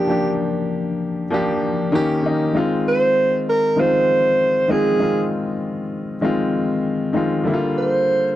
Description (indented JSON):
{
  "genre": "soul",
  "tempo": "98 BPM",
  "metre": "4/4",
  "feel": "swing 54% on 16ths",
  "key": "unclear",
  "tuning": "A4 = 438 Hz",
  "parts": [
    { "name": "breathy alto saxophone", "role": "melody", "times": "0.0-8.4 s", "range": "G4 to C5", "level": "-17 LUFS", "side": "right 2 dB", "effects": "none" },
    { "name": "clear baby grand piano", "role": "accompaniment", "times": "0.0-8.4 s", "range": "D3 to G4", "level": "-19 LUFS", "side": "left 2 dB", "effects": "none" }
  ],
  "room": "small room ambience",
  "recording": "dry, close 1970s-style studio recording",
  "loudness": "-17 LUFS",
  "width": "side -13 dB against mid",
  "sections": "0.0-8.4 A section",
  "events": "none",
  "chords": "0.0 Gm7; 1.9 Eb7; 2.5 Ab6; 7.5 Gm7"
}